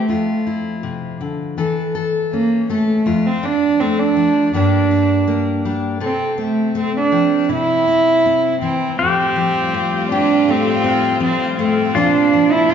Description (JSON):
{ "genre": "acoustic folk-pop ballad", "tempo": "81 BPM", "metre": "4/4", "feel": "straight", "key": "F major", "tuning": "A4 = 436 Hz", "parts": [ { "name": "warm cello", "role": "melody", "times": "0.0-12.7 s", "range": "A3 to F4", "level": "-16 LUFS", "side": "right 3 dB", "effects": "none" }, { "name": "fingerpicked steel-string acoustic guitar", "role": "accompaniment", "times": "0.0-12.7 s", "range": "F2 to A4", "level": "-20 LUFS", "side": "left 5 dB", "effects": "none" }, { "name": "pedal steel guitar", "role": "second line", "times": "9.0-12.7 s", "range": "F4 to G4", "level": "-21 LUFS", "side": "left 4 dB", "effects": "none" }, { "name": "warm chamber string section", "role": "sustained chords", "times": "9.0-12.7 s", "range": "A2 to F4", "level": "-25 LUFS", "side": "left 3 dB", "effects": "none" } ], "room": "wet recital hall reverb, RT60 1.5 s", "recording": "recorded in a church or concert hall, nothing above 7.6 kHz", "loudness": "-14 LUFS", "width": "side -8 dB against mid", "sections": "0.0-9.0 A section; 9.0-12.7 B section", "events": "none", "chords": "0.1 Dmadd9/F; 1.6 A/E; 3.1 Dm/F; 4.5 Gm; 6.0 F/C; 7.5 C; 9.0 Fadd9; 12.0 Bbadd9" }